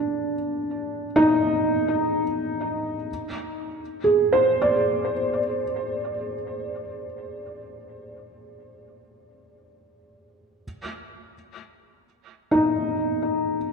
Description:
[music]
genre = ambient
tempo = free time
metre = none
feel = none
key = unclear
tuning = A4 = 439 Hz
[part]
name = felt-muted upright piano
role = solo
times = 0.0-13.7 s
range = D4 to D5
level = -22 LUFS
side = equal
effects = ping-pong delay
[sound]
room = wet concert hall reverb, RT60 2.4 s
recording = dark, warm production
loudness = -21 LUFS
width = side -5 dB against mid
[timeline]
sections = 0.0-13.7 A section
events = none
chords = 0.0 N.C.; 3.1 Ab; 10.6 N.C.

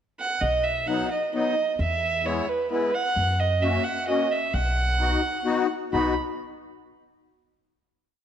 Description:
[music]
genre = alpine folk, alpine dance band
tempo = 131 BPM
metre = 3/4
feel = straight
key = B major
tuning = A4 = 440 Hz
[part]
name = dark fiddle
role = melody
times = 0.2-6.1 s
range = B4 to B5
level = -25 LUFS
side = right 3 dB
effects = none
[part]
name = upright bass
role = bass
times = 0.4-6.1 s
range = B1 to F#2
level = -27 LUFS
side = equal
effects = none
[part]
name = musette accordion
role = accompaniment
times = 0.9-6.1 s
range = F#3 to F#4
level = -27 LUFS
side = left 5 dB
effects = none
[sound]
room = moderate recital hall reverb, RT60 1.7 s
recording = none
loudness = -22 LUFS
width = side -9 dB against mid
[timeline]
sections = 0.0-0.4 pickup bar; 0.4-5.9 A section; 5.9-7.3 final chord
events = none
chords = 0.4 B; 1.8 E; 3.2 F#; 4.5 B

